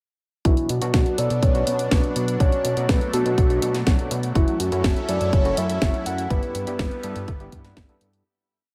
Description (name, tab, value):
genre	italo disco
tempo	123 BPM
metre	4/4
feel	straight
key	B minor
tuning	A4 = 439 Hz
part	soft octave-layered synth lead	melody	0.5-8.0 s	E4 to F#5	-28 LUFS	equal	chorus, tape echo, shimmer reverb
part	lush unison pad	sustained chords	0.7-8.2 s	F#3 to A4	-34 LUFS	equal	chorus, phaser, shimmer reverb
part	overdriven tine electric piano	stabs	0.5-8.2 s	G2 to B4	-34 LUFS	equal	fast tremolo, shimmer reverb
part	fat analog bass	bass	0.5-8.2 s	F#1 to B2	-28 LUFS	equal	none
part	electronic kick drum	drums	0.5-7.9 s	none	-23 LUFS	equal	none
part	house drum kit	drums	0.5-8.2 s	hi-hat, snare drum	-30 LUFS	equal	none
room	light reverb, digital ambience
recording	none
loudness	-22 LUFS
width	mono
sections	0.5-8.3 verse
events	fade-out 5.7-8.3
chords	0.5 Bm; 4.4 F#m7; 6.3 Em/G